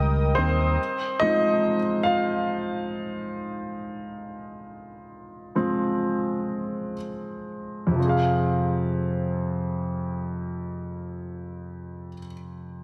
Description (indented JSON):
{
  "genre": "pop",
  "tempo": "free time",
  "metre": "none",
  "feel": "none",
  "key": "F minor",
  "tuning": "A4 = 444 Hz",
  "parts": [
    { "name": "clear grand piano", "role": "accompaniment", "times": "0.0-12.8 s", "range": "F2 to F5", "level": "-28 LUFS", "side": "equal", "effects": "lush chorus" },
    { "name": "warm analog pad", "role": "sustained chords", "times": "0.0-0.8 s", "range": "Bb4 to Eb6", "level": "-33 LUFS", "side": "equal", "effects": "chorus, tremolo" },
    { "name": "picked electric bass", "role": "bass", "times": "0.0-0.8 s", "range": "Db2 to Eb2", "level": "-24 LUFS", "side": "equal", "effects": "none" }
  ],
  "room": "wet lush hall reverb, RT60 2.5 s",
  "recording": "dreamy mix soaked in reverb",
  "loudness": "-26 LUFS",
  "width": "mono",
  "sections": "0.0-8.0 A section; 8.0-12.0 B section",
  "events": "grand piano solo 0.0-8.0; slowing down 0.8-8.0",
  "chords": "0.0 Eb; 0.8 Fm"
}